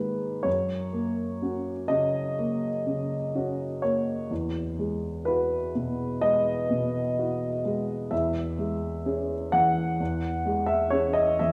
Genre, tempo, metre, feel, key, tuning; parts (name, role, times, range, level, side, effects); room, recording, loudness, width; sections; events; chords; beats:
neoclassical minimalist piano; 63 BPM; 4/4; rubato; A4 = 439 Hz
dark baby grand piano; solo; 0.0-11.5 s; E2 to F#5; -27 LUFS; equal
wet recital hall reverb, RT60 1.6 s; recorded in a church or concert hall; -27 LUFS; mono
0.0-11.5 A section
0.5 F#; 4.3 Eadd9; 8.1 C#m/E
| 0.46 1.43 2.39 3.35 | 4.31 5.27 6.22 7.18 | 8.12 9.05 10.00 10.93